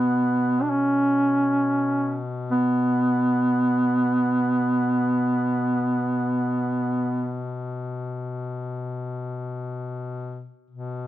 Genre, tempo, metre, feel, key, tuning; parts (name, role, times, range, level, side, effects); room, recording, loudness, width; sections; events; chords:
caucasian folk, Caucasian lament; free time; A4 = 443 Hz
warm duduk; melody; 0.0-7.5 s; B3 to D4; -20 LUFS; right 1 dB
clear duduk; drone; 0.0-11.1 s; B2; -30 LUFS; left 3 dB
small room ambience; dry, close 1970s-style studio recording; -21 LUFS; side -14 dB against mid
0.0-11.1 A section